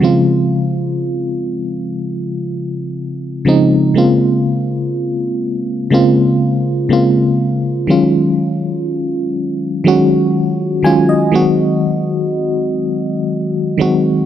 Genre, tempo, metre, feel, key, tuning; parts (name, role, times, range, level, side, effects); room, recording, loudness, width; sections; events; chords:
R&B; 61 BPM; 4/4; straight; A4 = 438 Hz
FM electric piano with auto-pan; solo; 0.0-14.3 s; Db3 to Ab5; -13 LUFS; equal
light reverb; -13 LUFS; side -10 dB against mid
0.0-4.0 A section; 4.0-14.3 B section
FM electric piano fill 10.3-11.8
0.0 Dbmaj7; 4.0 Bbm9; 7.9 Ebm11; 11.3 Ab7